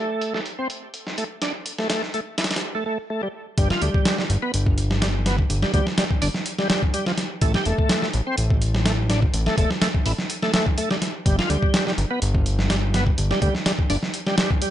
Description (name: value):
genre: breakbeat, breaks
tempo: 125 BPM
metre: 4/4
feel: swing 53% on 16ths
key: G mixolydian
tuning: A4 = 440 Hz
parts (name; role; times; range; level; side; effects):
- bright tonewheel organ; riff; 0.0-14.7 s; F3 to G4; -26 LUFS; equal; overdrive, chorus vibrato, slow rotary speaker, tape echo
- dusty soul sampler-style drum kit; drums; 0.2-14.7 s; hi-hat, kick drum, snare drum; -22 LUFS; equal; high-pass filter on snare, high-pass filter on hats, high-pass filter on kick, high-pass filter on room
- fat analog bass; bass; 3.6-14.0 s; E1 to D2; -22 LUFS; equal; none
room: digital ambience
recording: low-pass filter, nothing above 10.7 kHz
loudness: -20 LUFS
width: side -12 dB against mid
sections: 0.0-3.6 A section; 3.6-14.7 B section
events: filter sweep 0.0-3.6; break 2.6-3.6; drop 3.6-14.7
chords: 0.0 N.C.; 11.3 G5